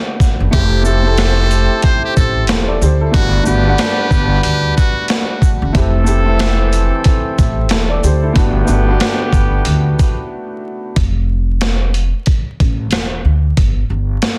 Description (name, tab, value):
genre	hip hop, boom-bap hip-hop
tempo	92 BPM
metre	4/4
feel	swing 60% on 16ths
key	F major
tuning	A4 = 440 Hz
part	warm upright piano	accompaniment	0.0-11.0 s	A3 to F#5	-23 LUFS	equal	cassette tape, high-pass filter, low-pass filter
part	warm horn section	stabs	0.0-10.3 s	D3 to C5	-24 LUFS	equal	high-pass filter, low-pass filter, delay
part	boom bap sampler-style drum kit	drums	0.2-14.4 s	hi-hat, kick drum, shaker, snare drum	-18 LUFS	equal	none
part	upright bass	bass	0.4-14.2 s	E1 to D2	-17 LUFS	equal	none
part	trumpet with metal mute	melody	0.5-5.1 s	F#4 to C5	-23 LUFS	equal	high-pass filter, low-pass filter, delay
part	finger snap	percussion	1.2-9.2 s	none	barely audible	none	none
room	little or no reverb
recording	dense, heavily limited modern master, vinyl crackle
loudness	-14 LUFS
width	mono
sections	0.0-11.0 A section; 11.0-14.4 B section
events	break 10.3-11.0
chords	0.0 Gmaj9; 0.5 Fmaj9; 3.1 Gmaj9; 5.7 Fmaj9; 8.4 Gmaj9; 11.0 F; 13.6 G5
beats	| 0.53 1.18 1.83 2.49 | 3.14 3.79 4.44 5.09 | 5.75 6.40 7.05 7.70 | 8.36 9.01 9.66 10.31 | 10.96 11.62 12.27 12.92 | 13.57 14.22